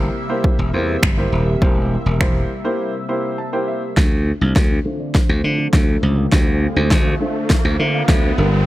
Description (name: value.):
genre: dance-pop.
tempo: 102 BPM.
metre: 4/4.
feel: straight.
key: D minor.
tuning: A4 = 440 Hz.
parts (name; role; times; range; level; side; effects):
warm baby grand piano; accompaniment; 0.0-8.7 s; G3 to A5; -24 LUFS; right 1 dB; sidechain pumping, low-pass filter.
lush unison pad; sustained chords; 0.0-8.7 s; C3 to E5; -29 LUFS; equal; chorus, phaser, sidechain pumping, low-pass filter.
slap bass; bass; 0.0-8.7 s; Eb1 to D3; -18 LUFS; equal; sidechain pumping.
deep house drum kit; drums; 0.4-8.2 s; finger snaps, kick drum, snare drum; -16 LUFS; equal; overdrive.
mallet-like synth pluck; arpeggios; 4.0-8.7 s; D4 to F5; -34 LUFS; left 3 dB; none.
riser; sound effects; 5.1-8.7 s; none; -28 LUFS; equal; none.
twelve-string electric guitar; melody; 4.9-6.9 s; A4 to D5; -33 LUFS; equal; none.
room: little or no reverb.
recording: none.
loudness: -15 LUFS.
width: side -16 dB against mid.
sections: 0.0-4.0 A section; 4.0-8.7 B section.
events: break 2.8-4.0; grand piano fill 3.1-4.0; build-up 4.0-8.7; drum fill 4.0-8.7; riser 5.1-8.7.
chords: 0.0 C7; 4.0 Dm7.